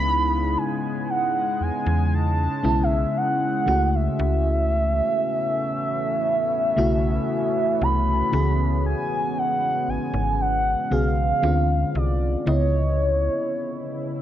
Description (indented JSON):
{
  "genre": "R&B",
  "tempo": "58 BPM",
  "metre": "4/4",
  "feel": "straight",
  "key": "unclear",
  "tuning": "A4 = 442 Hz",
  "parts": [
    { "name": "mellow horn-like synth lead", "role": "melody", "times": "0.0-14.2 s", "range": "C#5 to B5", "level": "-24 LUFS", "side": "right 1 dB", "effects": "chorus, phaser, cassette tape, analog delay" },
    { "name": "mellow FM electric piano", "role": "accompaniment", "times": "0.0-14.2 s", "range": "C#3 to F5", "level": "-27 LUFS", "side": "left 2 dB", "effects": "chorus, cassette tape" },
    { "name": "deep dark ambient pad", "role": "sustained chords", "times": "0.0-14.2 s", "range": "C#3 to F4", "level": "-30 LUFS", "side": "equal", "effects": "chorus, built-in reverb, cassette tape" },
    { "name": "slap-like FM bass", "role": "bass", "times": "0.0-13.3 s", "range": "G#1 to E2", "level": "-23 LUFS", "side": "equal", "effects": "none" }
  ],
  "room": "light reverb, digital ambience",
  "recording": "home recording on cassette",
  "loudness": "-20 LUFS",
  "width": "side -11 dB against mid",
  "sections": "0.0-14.2 A section",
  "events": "none",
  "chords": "0.0 Emaj13; 3.7 B9sus4/C#; 8.3 E6/C#; 11.4 Dm7; 12.5 C#m9"
}